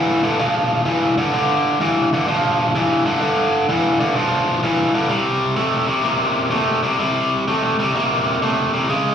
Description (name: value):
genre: blues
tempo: 127 BPM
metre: 4/4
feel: swing 67% on 8ths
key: unclear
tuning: A4 = 441 Hz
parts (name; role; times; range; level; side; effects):
- biting overdriven guitar; solo; 0.0-9.1 s; G2 to Bb3; -16 LUFS; equal; slapback echo, analog delay
room: light reverb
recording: live gig heard through the venue's PA, recital hall reverb, studio reverb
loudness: -16 LUFS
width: side -8 dB against mid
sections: 0.0-9.1 A section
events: none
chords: 0.0 G5; 5.1 C5